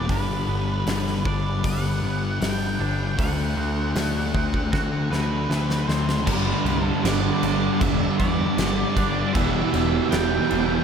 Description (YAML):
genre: rock, shoegaze and dream pop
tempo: 78 BPM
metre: 4/4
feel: straight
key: G major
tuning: A4 = 441 Hz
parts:
  - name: octave-fuzz lead guitar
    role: melody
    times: 0.0-10.8 s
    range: B4 to G5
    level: -30 LUFS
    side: right 2 dB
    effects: distortion, ping-pong delay
  - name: twangy electric guitar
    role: arpeggios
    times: 0.0-10.8 s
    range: A3 to F#4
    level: -35 LUFS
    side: right 7 dB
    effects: wide subtle chorus, ping-pong delay
  - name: overdriven semi-hollow guitar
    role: riff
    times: 0.0-10.8 s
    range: E2 to G4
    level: -28 LUFS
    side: right 10 dB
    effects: reverse reverb
  - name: thick fuzz guitar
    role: riff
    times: 0.0-10.8 s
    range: E2 to D4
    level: -26 LUFS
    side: left 5 dB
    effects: distortion, analog chorus
  - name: growling picked electric bass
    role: bass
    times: 0.0-10.8 s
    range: E1 to E2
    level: -27 LUFS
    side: equal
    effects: overdrive
  - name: huge arena drum kit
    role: drums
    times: 0.1-10.7 s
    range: crash cymbal, hi-hat, kick drum, snare drum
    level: -28 LUFS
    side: equal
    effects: none
  - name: tight distorted guitar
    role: riff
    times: 6.3-10.8 s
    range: E2 to G3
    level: -30 LUFS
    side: right 2 dB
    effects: distortion
room: moderate huge ambient reverb, RT60 7.3 s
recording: dreamy mix soaked in reverb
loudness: -20 LUFS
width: side -7 dB against mid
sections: 0.0-6.3 A section; 6.3-10.8 B section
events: drum fill 4.7-6.3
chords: 0.1 Gmaj7; 3.2 D7; 6.3 G; 9.3 Em7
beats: | 0.09 0.86 1.63 2.41 | 3.18 3.95 4.73 5.50 | 6.27 7.04 7.81 8.58 | 9.35 10.12